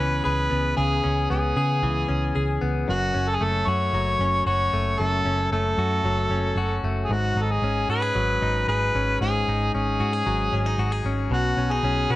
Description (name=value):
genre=indie pop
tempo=114 BPM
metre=4/4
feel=straight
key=C# minor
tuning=A4 = 440 Hz
part: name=mellow harmonica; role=melody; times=0.0-12.2 s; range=F#4 to C#5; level=-25 LUFS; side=equal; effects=none
part: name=direct-recorded clean electric guitar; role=arpeggios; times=0.0-12.2 s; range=F#2 to G#4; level=-27 LUFS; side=left 4 dB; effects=none
part: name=vintage muted picked electric bass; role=bass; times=0.0-12.2 s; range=F#1 to C#3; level=-25 LUFS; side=right 1 dB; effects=none
room=light reverb, small room ambience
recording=none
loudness=-21 LUFS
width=side -16 dB against mid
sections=0.0-12.2 A section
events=none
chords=0.0 C#m7; 2.9 F#m; 7.1 G#7sus4; 11.3 Badd9